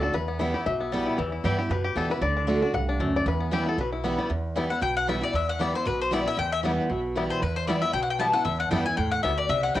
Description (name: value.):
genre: bluegrass.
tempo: 231 BPM.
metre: 4/4.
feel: swing 55% on 8ths.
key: E minor.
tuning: A4 = 436 Hz.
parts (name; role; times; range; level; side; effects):
bluegrass banjo; melody; 0.0-9.8 s; E3 to F#5; -30 LUFS; left 4 dB; none.
picked steel-string acoustic guitar; accompaniment; 0.0-9.8 s; E2 to F#4; -28 LUFS; right 1 dB; cassette tape.
upright bass; bass; 0.0-9.8 s; B1 to G2; -31 LUFS; right 2 dB; none.
mandolin; melody; 4.7-9.8 s; B4 to A5; -26 LUFS; left 4 dB; tape echo.
room: moderate studio reverb, RT60 0.6 s.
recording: home recording on cassette.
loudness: -24 LUFS.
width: side -13 dB against mid.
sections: 0.0-4.3 A section; 4.3-9.8 A section.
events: five-string banjo solo 0.0-4.3; mandolin solo 4.3-9.8.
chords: 0.1 Em; 2.2 D; 3.3 Em.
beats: | 0.14 0.40 0.66 0.92 | 1.18 1.44 1.70 1.96 | 2.22 2.48 2.74 3.00 | 3.26 3.52 3.78 4.04 | 4.30 4.56 4.82 5.08 | 5.34 5.60 5.86 6.12 | 6.38 6.64 6.90 7.16 | 7.42 7.68 7.94 8.20 | 8.46 8.72 8.98 9.24 | 9.50 9.76.